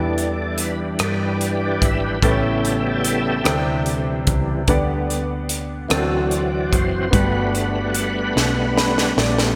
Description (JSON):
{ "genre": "slow gospel", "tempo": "49 BPM (dotted quarters)", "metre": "6/8", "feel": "straight", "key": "G major", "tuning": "A4 = 440 Hz", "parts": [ { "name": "clear concert grand piano", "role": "accompaniment", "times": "0.0-9.6 s", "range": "G2 to B5", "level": "-27 LUFS", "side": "equal", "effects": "analog chorus" }, { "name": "overdriven tonewheel organ", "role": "sustained chords", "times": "0.0-9.5 s", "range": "C3 to G5", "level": "-25 LUFS", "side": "equal", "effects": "fast rotary speaker, chorus vibrato" }, { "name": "hollow-body short-scale fingered electric bass", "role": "bass", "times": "0.0-9.5 s", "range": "F#1 to G2", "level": "-27 LUFS", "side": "equal", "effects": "none" }, { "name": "crisp fusion drum kit", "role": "drums", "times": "0.2-9.6 s", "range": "hi-hat, kick drum, rim click, snare drum", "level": "-24 LUFS", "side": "equal", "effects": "gated reverb" } ], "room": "moderate lush hall reverb, RT60 2.9 s", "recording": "bright 1980s-style digital production", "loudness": "-20 LUFS", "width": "mono", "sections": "0.0-9.6 A section", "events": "tonewheel organ solo 0.0-9.6; drum fill 8.4-9.6; grand piano fill 8.4-9.6", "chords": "0.0 Em7; 2.2 A7; 3.5 D9sus4; 4.7 G/D; 5.9 D7; 7.1 Gmaj7" }